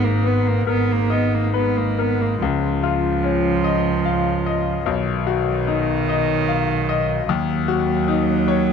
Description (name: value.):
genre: neoclassical piano and strings.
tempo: 45-51 BPM (dotted quarters).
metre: 6/8.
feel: rubato.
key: unclear.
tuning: A4 = 440 Hz.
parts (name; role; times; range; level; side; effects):
warm cello; second line; 0.0-8.7 s; D#3 to Cb4; -23 LUFS; right 11 dB; none.
bright grand piano; accompaniment; 0.0-8.7 s; B1 to F5; -21 LUFS; left 9 dB; none.
dark double bass; bass; 0.0-8.7 s; Ab1 to Eb2; -24 LUFS; right 2 dB; none.
room: light reverb, small room ambience.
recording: 1960s-style stereo with parts hard left and right.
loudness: -18 LUFS.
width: side -6 dB against mid.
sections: 0.0-2.4 A section; 2.4-8.7 B section.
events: none.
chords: 0.0 Abmadd9; 2.4 Dbadd9; 4.9 B; 7.3 Ebm7.